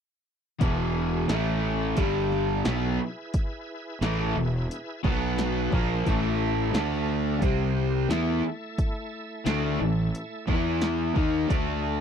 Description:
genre	classic rock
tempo	88 BPM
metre	4/4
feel	straight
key	unclear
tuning	A4 = 440 Hz
part	bright tonewheel organ	sustained chords	0.6-12.0 s	G3 to A5	-38 LUFS	equal	slow rotary speaker, overdrive, chorus vibrato
part	crunchy overdriven guitar	riff	0.6-12.0 s	E2 to E4	-29 LUFS	right 12 dB	none
part	overdriven semi-hollow guitar	riff	0.6-12.0 s	E2 to E4	-29 LUFS	left 11 dB	none
part	fuzz fingered electric bass	bass	0.6-12.0 s	E1 to E2	-29 LUFS	equal	overdrive
part	punchy analog drum machine	drums	0.6-11.7 s	hi-hat, kick drum, snare drum	-26 LUFS	equal	none
room	little or no reverb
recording	dry, close 1970s-style studio recording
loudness	-24 LUFS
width	side -8 dB against mid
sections	0.6-12.0 A section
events	none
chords	0.6 E; 1.3 A5; 2.0 G5; 2.7 E; 5.0 B5; 5.7 A#5; 6.1 A5; 6.7 D5; 7.4 C5; 8.1 A5; 10.5 E5; 11.2 D#5; 11.5 D5

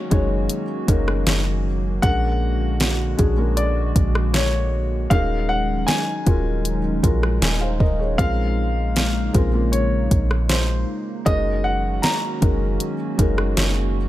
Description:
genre	contemporary R&B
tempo	78 BPM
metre	4/4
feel	straight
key	Bb minor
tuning	A4 = 439 Hz
part	warm grand piano	melody	0.0-13.1 s	C5 to Bb5	-26 LUFS	left 1 dB	ping-pong delay
part	felt-muted upright piano	accompaniment	0.0-14.1 s	Ab3 to Ab5	-26 LUFS	left 3 dB	none
part	hollow soft pad	sustained chords	0.0-14.1 s	Db3 to Gb4	-28 LUFS	equal	chorus
part	soft 808-style bass	bass	0.1-14.1 s	Eb1 to Bb1	-22 LUFS	equal	none
part	smooth R&B drum kit	drums	0.1-13.8 s	hi-hat, kick drum, rim click, snare drum	-20 LUFS	equal	none
room	little or no reverb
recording	none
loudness	-18 LUFS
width	side -14 dB against mid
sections	0.0-14.1 A section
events	none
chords	0.0 Gb6; 2.0 Bb7alt; 5.1 Ebm11; 8.2 Bbm9; 11.3 Gb6

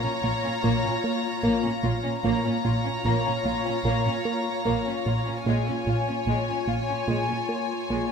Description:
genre	cinematic, suspense film score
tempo	74 BPM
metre	4/4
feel	straight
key	Bb minor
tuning	A4 = 440 Hz
part	warm symphonic violin section	melody	0.0-8.1 s	Ab5 to Bb5	-31 LUFS	left 4 dB	none
part	warm symphonic violin section	second line	0.0-8.1 s	Ab3 to Db5	-31 LUFS	left 2 dB	none
part	glassy FM pad	sustained chords	0.0-8.1 s	F4 to Ab5	-32 LUFS	left 2 dB	ensemble chorus, built-in reverb
part	plucky analog bass	riff	0.0-8.1 s	Bb2 to Bb3	-28 LUFS	right 2 dB	none
part	warm symphonic cello section	bass	0.0-8.0 s	Bb2	-32 LUFS	right 2 dB	none
part	warm symphonic double bass section	bass	0.2-8.0 s	Bb1	-33 LUFS	right 4 dB	none
part	bright baby grand piano	texture	3.1-5.5 s	Bb5	-36 LUFS	left 6 dB	none
room	moderate scoring stage reverb, RT60 1.5 s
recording	none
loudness	-23 LUFS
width	side -6 dB against mid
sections	0.0-8.1 A section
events	none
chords	0.0 Bbm; 5.5 Db/Bb

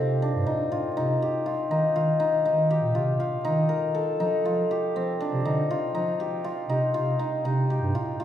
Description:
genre	contemporary instrumental, chamber music in an uneven meter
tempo	120 BPM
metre	5/4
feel	straight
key	C dorian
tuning	A4 = 440 Hz
part	hammered dulcimer	arpeggios	0.0-8.2 s	C4 to Bb4	-25 LUFS	left 2 dB	none
part	dark bass clarinet	bass	0.0-8.2 s	G2 to F3	-27 LUFS	right 2 dB	none
room	wet recital hall reverb, RT60 1.8 s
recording	heard from further back in the room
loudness	-23 LUFS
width	side -10 dB against mid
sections	0.0-8.2 A section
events	none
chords	0.0 Cm; 1.7 Eb; 4.2 F5; 6.7 Cm

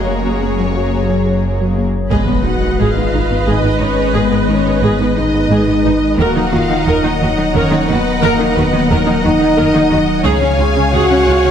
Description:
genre	cinematic, hybrid orchestral and electronic film score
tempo	59 BPM (dotted quarters)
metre	6/8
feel	straight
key	G# dorian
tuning	A4 = 440 Hz
part	clear symphonic violin section	melody	0.0-11.5 s	A#4 to G#5	-23 LUFS	left 4 dB	none
part	clear symphonic violin section	second line	0.0-11.5 s	G#4 to G#5	-23 LUFS	left 3 dB	none
part	rich studio viola section	accompaniment	0.0-11.5 s	G#3 to C#5	-21 LUFS	right 1 dB	none
part	hollow soft pad	sustained chords	0.0-11.5 s	C#3 to A#5	-20 LUFS	left 1 dB	chorus
part	pure sine sub bass	bass	0.0-11.5 s	D#1 to C#2	-22 LUFS	equal	none
part	rich symphonic cello section	bass	0.0-11.5 s	F#2 to D#3	-21 LUFS	right 3 dB	none
part	soft round pluck	arpeggios	0.1-11.5 s	C#3 to F#4	-23 LUFS	left 1 dB	chorus, tape echo
part	mellow French horn section	sustained chords	2.1-11.5 s	A#3 to G#4	-17 LUFS	left 1 dB	none
part	rich symphonic double bass section	bass	2.1-11.3 s	G#1 to D#2	-21 LUFS	right 3 dB	none
part	impact	sound effects	2.1-4.1 s	none	-22 LUFS	right 1 dB	none
room	moderate scoring stage reverb, RT60 2.2 s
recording	none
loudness	-11 LUFS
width	side -8 dB against mid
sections	0.0-2.1 A section; 2.1-11.5 B section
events	impact 2.1-4.2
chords	0.0 F#add9; 2.1 G#m; 6.2 D#m; 10.3 C#

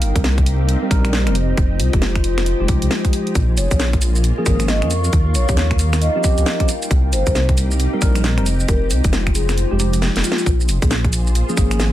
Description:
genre	UK garage, two-step garage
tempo	135 BPM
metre	4/4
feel	swing 62% on 16ths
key	Bb dorian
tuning	A4 = 439 Hz
part	soft string machine	sustained chords	0.0-11.9 s	G3 to C5	-31 LUFS	equal	ensemble chorus, sidechain pumping
part	dark detuned saw bass	bass	0.0-11.9 s	F1 to F2	-18 LUFS	equal	tube saturation
part	garage drum kit	drums	0.0-11.9 s	finger snaps, hi-hat, shaker, snare drum	-23 LUFS	equal	none
part	warbly tape-like pad	texture	0.0-10.5 s	C4 to Db6	-27 LUFS	left 2 dB	chorus, built-in reverb, sidechain pumping
part	mellow tine electric piano	stabs	0.2-11.9 s	F3 to Bb4	-24 LUFS	equal	analog chorus, ping-pong delay
part	electronic kick drum	drums	0.2-11.7 s	none	-18 LUFS	equal	none
part	vibraphone with soft mallets	melody	3.6-10.5 s	F4 to Eb5	-25 LUFS	left 1 dB	ping-pong delay
room	little or no reverb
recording	dense, heavily limited modern master, vinyl crackle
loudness	-15 LUFS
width	side -13 dB against mid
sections	0.0-10.5 A section; 10.5-11.9 A section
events	kick drops out 9.6-10.5; drum fill 10.0-10.5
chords	0.0 Cm7; 1.4 Fm9; 3.4 Bbm7; 5.1 Eb13; 6.9 Cm7; 8.5 Fm9; 10.5 Bbm7

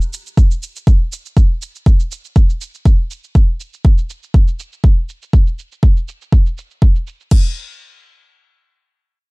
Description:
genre	afro house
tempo	121 BPM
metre	4/4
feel	straight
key	none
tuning	none
part	electronic shaker and crash cymbal	drums	0.0-7.4 s	none	-33 LUFS	right 2 dB	low-pass filter on perc, low-pass filter on snare, low-pass filter on cymbals
part	electronic kick drum	drums	0.4-7.4 s	none	-10 LUFS	equal	none
room	little or no reverb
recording	dark, warm production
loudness	-13 LUFS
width	side -35 dB against mid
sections	0.0-7.3 A section; 7.3-9.3 B section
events	none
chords	none

